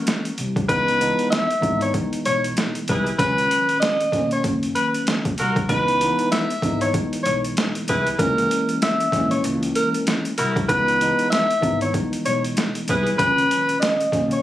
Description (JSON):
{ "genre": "hip hop, boom-bap hip-hop", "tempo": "96 BPM", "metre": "4/4", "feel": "swing 60% on 16ths", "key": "C# dorian", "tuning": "A4 = 436 Hz", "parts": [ { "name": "mellow tine electric piano", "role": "accompaniment", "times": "0.0-14.4 s", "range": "C#2 to D#4", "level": "-25 LUFS", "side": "equal", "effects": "medium stereo tremolo, cassette tape, high-pass filter, low-pass filter" }, { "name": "edgy saxophone section", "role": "stabs", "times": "0.0-13.1 s", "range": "D#4 to B4", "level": "-23 LUFS", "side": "equal", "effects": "high-pass filter, low-pass filter, slapback echo" }, { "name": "boom bap sampler-style drum kit", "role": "drums", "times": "0.1-14.4 s", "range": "hi-hat, kick drum, snare drum", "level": "-25 LUFS", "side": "equal", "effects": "overdrive" }, { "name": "upright bass", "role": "bass", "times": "0.4-14.4 s", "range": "F#1 to C#2", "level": "-28 LUFS", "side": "equal", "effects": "none" }, { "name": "mellow tenor saxophone", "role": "melody", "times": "0.7-14.4 s", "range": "A#4 to E5", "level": "-20 LUFS", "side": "equal", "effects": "high-pass filter, low-pass filter, slapback echo" } ], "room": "light reverb", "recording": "recorded on a phone in the room, studio reverb", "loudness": "-18 LUFS", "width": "side -13 dB against mid", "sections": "0.7-14.4 A section", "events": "none", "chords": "0.0 F#7; 0.7 C#m7; 3.2 Bmaj7; 5.7 C#m7; 8.2 F#7 (rootless); 10.7 C#m7; 13.2 Bmaj7", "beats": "0.07 | 0.69 1.32 1.94 2.57 | 3.19 3.82 4.44 5.07 | 5.69 6.32 6.94 7.57 | 8.19 8.82 9.44 10.07 | 10.69 11.32 11.94 12.57 | 13.19 13.82" }